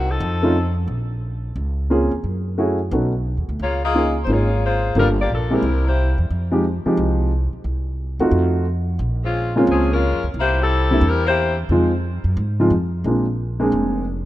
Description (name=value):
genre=jazz, big band swing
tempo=178 BPM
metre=4/4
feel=swing 63% on 8ths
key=F minor, Bb minor from 9.0 s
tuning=A4 = 440 Hz
part: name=mellow saxophone section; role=melody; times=0.0-0.8, 3.6-6.2, 9.2-11.6 s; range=F3 to Eb5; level=-22 LUFS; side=left 3 dB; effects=none
part: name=upright bass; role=bass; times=0.0-14.2 s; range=F1 to Ab2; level=-21 LUFS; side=equal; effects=none
part: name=warm baby grand piano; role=accompaniment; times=0.4-14.0 s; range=F3 to A4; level=-20 LUFS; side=equal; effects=none
room=light reverb, small room reverb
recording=rough home demo mix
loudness=-17 LUFS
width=side -15 dB against mid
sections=0.0-9.0 A section; 9.0-14.3 B section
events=none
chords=0.2 F7b13; 0.9 Bbm9; 2.2 Gbm7; 2.9 B9; 3.6 Db69; 5.0 Gm7; 5.6 C7; 6.3 Fm7; 7.7 Cdim; 8.3 F7b9; 9.0 Bbm9; 10.4 C7; 11.7 Fm7; 13.1 Bb7